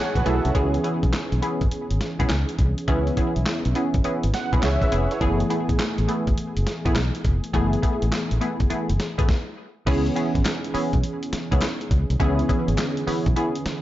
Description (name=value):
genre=R&B, new jack swing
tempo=103 BPM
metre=4/4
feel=swing 65% on 16ths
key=unclear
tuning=A4 = 441 Hz
part: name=warm analog keys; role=accompaniment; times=0.0-13.8 s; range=D3 to A5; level=-26 LUFS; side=right 1 dB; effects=chorus
part: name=fretless electric bass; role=bass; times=0.2-13.7 s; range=E#1 to C#2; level=-24 LUFS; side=equal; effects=none
part: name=dusty soul sampler-style drum kit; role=drums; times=0.2-13.8 s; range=crash cymbal, handclaps, hi-hat, kick drum, snare drum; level=-25 LUFS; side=equal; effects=gated reverb
part: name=funky polysynth comp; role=stabs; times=0.3-13.6 s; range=A3 to G#4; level=-28 LUFS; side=equal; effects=chorus, phaser, digital delay
part: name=group handclap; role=percussion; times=10.5-13.0 s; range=none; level=-39 LUFS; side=left 3 dB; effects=none
room=light reverb, digital ambience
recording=nothing above 7.6 kHz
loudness=-20 LUFS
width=side -14 dB against mid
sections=0.0-9.9 A section; 9.9-13.8 B section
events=synth keys fill 0.0-0.6, 4.0-5.2; stop 9.3-9.9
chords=0.0 F#m11; 0.6 C#m7; 5.2 F#m11; 9.9 C#m7